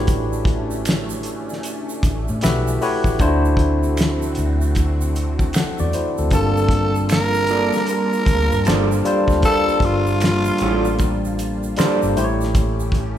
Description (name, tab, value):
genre	R&B, neo-soul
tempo	77 BPM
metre	4/4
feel	swing 64% on 16ths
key	G dorian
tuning	A4 = 440 Hz
part	barky tine electric piano	accompaniment	0.0-13.2 s	A2 to A5	-22 LUFS	left 2 dB	none
part	lush unison pad	sustained chords	0.0-13.2 s	D3 to A5	-29 LUFS	equal	chorus, phaser
part	vintage muted fingered electric bass	bass	0.0-13.2 s	G1 to A2	-22 LUFS	equal	none
part	cloth-damped thuddy drum kit	drums	0.1-13.2 s	hi-hat, kick drum, snare drum	-22 LUFS	equal	none
part	egg shaker and finger snaps	percussion	0.1-12.9 s	none	-34 LUFS	right 3 dB	none
part	growling tenor saxophone	melody	6.3-11.4 s	F4 to Bb4	-21 LUFS	right 1 dB	none
part	electric guitar through a small old amp	second line	7.1-12.0 s	Bb3 to D5	-26 LUFS	right 5 dB	spring reverb
room	moderate recital hall reverb, RT60 1.7 s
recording	recorded in a church or concert hall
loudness	-16 LUFS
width	side -11 dB against mid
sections	0.0-13.2 A section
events	none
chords	0.0 A13; 3.2 D7; 6.3 Gm9; 12.2 A7